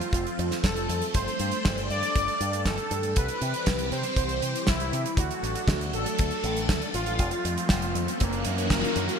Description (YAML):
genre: italo disco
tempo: 119 BPM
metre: 4/4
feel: straight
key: unclear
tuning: A4 = 440 Hz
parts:
  - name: analog synth brass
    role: melody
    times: 0.0-9.2 s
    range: A#3 to D5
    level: -30 LUFS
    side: equal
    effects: chorus, ping-pong delay
  - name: phased string machine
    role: sustained chords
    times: 0.0-9.2 s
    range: E3 to A4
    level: -32 LUFS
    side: left 1 dB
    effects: ensemble chorus, phaser
  - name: damped 70s drum kit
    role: drums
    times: 0.0-9.2 s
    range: hi-hat, snare drum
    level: -31 LUFS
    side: right 2 dB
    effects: studio reverb, gated reverb
  - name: fingered electric bass with an envelope filter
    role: bass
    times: 0.1-9.1 s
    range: F1 to C3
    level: -32 LUFS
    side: equal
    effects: tube saturation
  - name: kick drum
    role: drums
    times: 0.1-8.8 s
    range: none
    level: -25 LUFS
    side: equal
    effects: studio reverb
  - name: riser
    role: sound effects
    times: 6.9-9.2 s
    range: none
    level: -36 LUFS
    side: equal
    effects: none
room: moderate lush hall reverb, RT60 1.8 s, small room ambience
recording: bright 1980s-style digital production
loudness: -24 LUFS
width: side -7 dB against mid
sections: 0.0-9.2 A section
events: riser 6.9-9.2; band accent 8.7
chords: 0.0 F; 1.1 Gsus2; 3.2 C; 5.2 D; 7.2 F; 8.2 F#7